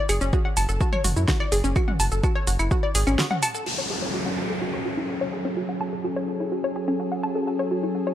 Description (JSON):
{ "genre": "melodic techno", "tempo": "126 BPM", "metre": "4/4", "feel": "straight", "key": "F# minor", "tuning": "A4 = 437 Hz", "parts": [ { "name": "analog pluck", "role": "arpeggios", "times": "0.0-8.1 s", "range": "C#4 to A5", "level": "-27 LUFS", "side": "left 1 dB", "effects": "chorus, sidechain pumping, tape echo" }, { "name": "round analog bass", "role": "bass", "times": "0.1-3.2 s", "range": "F#1 to F#2", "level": "-24 LUFS", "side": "equal", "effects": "sidechain pumping" }, { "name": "deep house drum kit", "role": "drums", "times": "0.1-3.8 s", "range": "claves, crash cymbal, hi-hat, shaker, snare drum, toms", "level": "-27 LUFS", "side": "right 1 dB", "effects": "overdrive, sidechain pumping on perc, sidechain pumping on hats, sidechain pumping on toms, sidechain pumping on cymbals" }, { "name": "electronic kick drum", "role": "drums", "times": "0.3-2.8 s", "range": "none", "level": "-24 LUFS", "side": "equal", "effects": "overdrive" }, { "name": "lush unison pad", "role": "sustained chords", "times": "3.7-8.1 s", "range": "F#3 to A4", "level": "-27 LUFS", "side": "equal", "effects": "chorus, sidechain pumping" }, { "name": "downlifter", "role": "sound effects", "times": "3.7-7.5 s", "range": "none", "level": "-31 LUFS", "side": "left 1 dB", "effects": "none" } ], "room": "light reverb", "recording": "dry, gritty hardware recording, transformer saturation", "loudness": "-22 LUFS", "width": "side -11 dB against mid", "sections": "0.0-3.7 A section; 3.7-8.1 B section", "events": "none", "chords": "0.0 E69 (rootless); 3.7 F#m" }